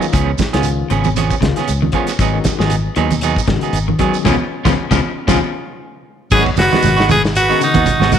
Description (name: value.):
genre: afrobeat.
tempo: 116 BPM.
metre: 4/4.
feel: swing 56% on 16ths.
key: G# dorian.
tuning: A4 = 441 Hz.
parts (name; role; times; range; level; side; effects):
overdriven tine electric piano; accompaniment; 0.0-8.2 s; D#3 to F#4; -25 LUFS; left 10 dB; wide subtle chorus.
clean electric guitar; arpeggios; 0.0-8.2 s; B2 to F#3; -22 LUFS; left 9 dB; slapback echo.
electric guitar at the edge of break-up; stabs; 0.0-8.2 s; E#3 to G#4; -20 LUFS; right 8 dB; tremolo.
shekere; percussion; 0.0-8.2 s; none; -28 LUFS; right 7 dB; none.
fingered electric bass; bass; 0.1-8.2 s; F#1 to D#2; -18 LUFS; left 1 dB; none.
warm soul drum kit; drums; 0.1-8.2 s; crash cymbal, hi-hat, kick drum, snare drum; -20 LUFS; left 1 dB; none.
congas; percussion; 0.4-8.2 s; none; -20 LUFS; right 7 dB; none.
raspy tenor saxophone; melody; 6.3-8.2 s; D#4 to G#4; -15 LUFS; left 1 dB; none.
clear trumpet; second line; 6.3-8.2 s; F#4 to B4; -22 LUFS; right 10 dB; none.
room: light reverb, studio reverb.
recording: 1960s-style stereo with parts hard left and right.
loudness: -13 LUFS.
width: side -8 dB against mid.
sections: 0.0-6.3 A section; 6.3-8.2 B section.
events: band accent 4.3-6.3; drum fill 6.1.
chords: 0.1 C#7; 2.2 G#m7; 4.3 C#7; 6.3 G#m7.